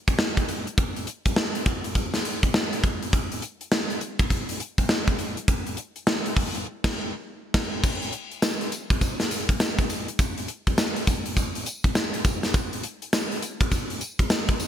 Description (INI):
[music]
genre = R&B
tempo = 102 BPM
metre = 4/4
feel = swing 63% on 16ths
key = none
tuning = none
[part]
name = gated 80s drum kit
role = drums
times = 0.1-14.7 s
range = crash cymbal, hi-hat, kick drum, snare drum, tambourine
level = -23 LUFS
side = equal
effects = gated reverb
[sound]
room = light reverb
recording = bright 1980s-style digital production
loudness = -23 LUFS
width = side -10 dB against mid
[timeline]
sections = 0.0-7.8 A section; 7.8-14.7 B section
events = band accent 6.7-7.8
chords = none